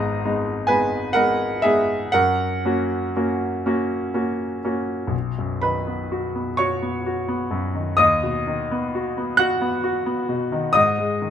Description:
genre	classical, romantic nocturne for solo piano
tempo	39-46 BPM (dotted quarters)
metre	12/8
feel	rubato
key	B major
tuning	A4 = 440 Hz
part	clear grand piano	solo	0.0-11.3 s	G#1 to F#6	-20 LUFS	equal	none
room	light reverb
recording	minimal, uncompressed stereo recording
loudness	-19 LUFS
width	side -9 dB against mid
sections	0.0-5.1 A section; 5.1-11.3 B section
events	none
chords	0.0 G#m; 2.1 F#; 5.1 B; 8.0 B/D#; 10.8 G#5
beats	0.68 2.13 3.65 | 5.13 6.59 7.99 9.40 | 10.76

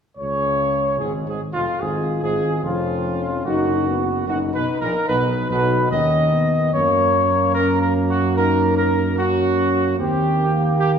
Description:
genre	classical, ceremonial fanfare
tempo	74 BPM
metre	4/4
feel	straight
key	Db major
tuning	A4 = 441 Hz
part	mellow trumpet section	melody	0.2-10.9 s	F4 to Eb5	-20 LUFS	equal	none
part	warm trombone section	sustained chords	0.2-11.0 s	F2 to G4	-27 LUFS	right 3 dB	none
part	dark tuba	bass	0.2-11.0 s	F1 to Gb2	-22 LUFS	right 1 dB	none
part	mellow French horn section	sustained chords	1.8-11.0 s	Bb3 to F4	-25 LUFS	left 5 dB	none
room	wet recital hall reverb, RT60 1.5 s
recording	minimal, uncompressed stereo recording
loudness	-17 LUFS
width	side -7 dB against mid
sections	0.2-11.0 A section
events	none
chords	0.2 Db; 3.5 Cb/Gb; 6.7 Gb; 10.0 Eb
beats	| 0.17 1.00 1.81 2.63 | 3.45 4.27 5.08 5.90 | 6.72 7.54 8.36 9.17 | 9.98 10.79

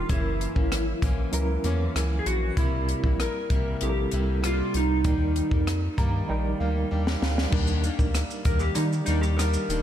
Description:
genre	indie pop, bedroom pop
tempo	97 BPM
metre	4/4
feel	straight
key	unclear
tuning	A4 = 440 Hz
part	electric slide guitar	melody	0.0-9.8 s	Eb4 to Bb4	-30 LUFS	right 1 dB	lush chorus, diffuse ambient delay
part	nylon-string guitar	accompaniment	0.0-9.8 s	Gb2 to E4	-32 LUFS	left 3 dB	lush chorus, warbly pitch drift
part	reed electric piano	accompaniment	0.0-9.8 s	Gb3 to Bb5	-33 LUFS	right 4 dB	fast tremolo, cassette tape
part	round analog bass	bass	0.0-9.8 s	Eb1 to Eb3	-27 LUFS	equal	none
part	compact cocktail drum kit	drums	0.1-9.8 s	crash cymbal, hi-hat, kick drum, rim click, shaker, snare drum	-27 LUFS	equal	none
room	light reverb, small room ambience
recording	none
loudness	-23 LUFS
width	side -10 dB against mid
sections	0.0-7.5 A section; 7.5-9.8 B section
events	reed electric piano fill 5.7-7.5; drum fill 6.3-7.5; electric slide guitar solo 7.5-9.8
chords	0.1 Gb7; 2.6 C7; 5.0 Ebmaj7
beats	| 0.10 0.72 1.34 1.96 | 2.57 3.19 3.81 4.43 | 5.05 5.67 6.29 6.91 | 7.53 8.15 8.77 9.39

